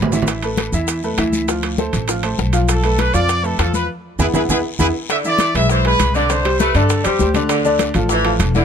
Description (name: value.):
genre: latin, salsa.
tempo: 200 BPM.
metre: 4/4.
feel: straight.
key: unclear.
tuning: A4 = 440 Hz.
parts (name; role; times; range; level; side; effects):
bright upright piano; accompaniment; 0.0-8.6 s; D3 to F5; -20 LUFS; left 2 dB; none.
upright bass; bass; 0.0-8.6 s; E1 to G2; -19 LUFS; equal; none.
congas; percussion; 0.0-8.6 s; none; -23 LUFS; left 2 dB; none.
timbales; percussion; 0.0-8.5 s; none; -25 LUFS; right 6 dB; none.
bongos; percussion; 0.1-8.6 s; none; -28 LUFS; left 10 dB; none.
guiro; percussion; 0.1-8.6 s; none; -33 LUFS; left 6 dB; none.
maracas; percussion; 0.1-8.6 s; none; -30 LUFS; right 7 dB; none.
clear trumpet section; melody; 2.7-7.4 s; E4 to E5; -20 LUFS; right 1 dB; none.
clear saxophone section; second line; 5.1-8.6 s; D3 to A3; -22 LUFS; right 1 dB; none.
room: little or no reverb.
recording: close, detailed microphones.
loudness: -15 LUFS.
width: side -8 dB against mid.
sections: 0.0-5.1 A section; 5.1-8.6 B section.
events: drum fill 0.0, 4.5-5.1; band accent 3.9-5.1.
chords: 0.3 Asus2; 1.5 Dm7; 2.7 Bm7b5; 3.9 E; 5.1 E7; 6.3 Csus2; 7.5 Dm.